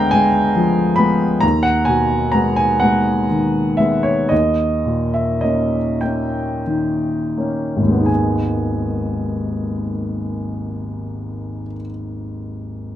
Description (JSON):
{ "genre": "classical, romantic nocturne for solo piano", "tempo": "26-48 BPM (dotted quarters)", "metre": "12/8", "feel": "rubato", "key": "G# minor", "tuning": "A4 = 440 Hz", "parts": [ { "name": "warm baby grand piano", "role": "solo", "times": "0.0-13.0 s", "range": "G#1 to B5", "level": "-16 LUFS", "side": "equal", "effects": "none" } ], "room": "light reverb", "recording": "dark, warm production", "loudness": "-16 LUFS", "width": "side -11 dB against mid", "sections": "0.0-8.1 A section; 8.1-13.0 B section", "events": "slowing down 0.0-8.1", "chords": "0.0 Ddim7; 1.4 G#m/D#; 4.3 D#7; 8.1 G#m" }